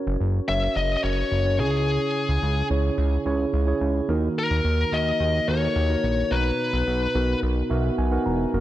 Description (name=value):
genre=1980s-style pop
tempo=108 BPM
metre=4/4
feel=straight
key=unclear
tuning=A4 = 442 Hz
part: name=mellow tine electric piano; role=accompaniment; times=0.0-8.6 s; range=B2 to A#5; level=-26 LUFS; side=right 2 dB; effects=none
part: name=fat analog bass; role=bass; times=0.1-8.6 s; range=E1 to D#2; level=-24 LUFS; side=equal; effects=none
part: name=high-gain lead guitar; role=melody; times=0.5-7.4 s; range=G#4 to E5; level=-26 LUFS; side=left 3 dB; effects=distortion
room=light reverb, digital ambience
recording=dark, warm production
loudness=-21 LUFS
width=side -14 dB against mid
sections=0.0-8.6 A section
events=tine electric piano fill 7.4-8.5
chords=0.0 F#; 1.6 C#m; 4.1 D#m; 6.3 Bmaj7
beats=0.21 0.76 1.32 | 1.87 2.43 2.98 3.54 | 4.09 4.65 5.21 5.76 | 6.32 6.87 7.43 7.98 | 8.54